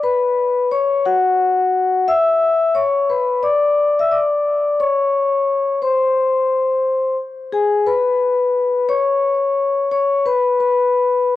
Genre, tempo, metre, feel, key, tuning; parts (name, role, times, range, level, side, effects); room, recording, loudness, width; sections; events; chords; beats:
hip hop; 88 BPM; 4/4; swing 65% on 16ths; A4 = 440 Hz
vibraphone with soft mallets; solo; 0.0-11.4 s; F#4 to E6; -15 LUFS; left 3 dB; tape echo
moderate small room reverb, RT60 0.5 s; home recording on cassette; -15 LUFS; side -14 dB against mid
0.0-7.5 A section; 7.5-11.4 B section
vibraphone solo 0.0-7.5, 7.5-11.4
0.0 N.C.; 0.7 F#5; 2.1 Bmadd11; 4.8 N.C.; 7.5 C#5; 10.2 N.C.
0.02 0.70 1.38 | 2.07 2.75 3.43 4.11 | 4.79 5.47 6.16 6.84 | 7.52 8.20 8.88 9.57 | 10.25 10.93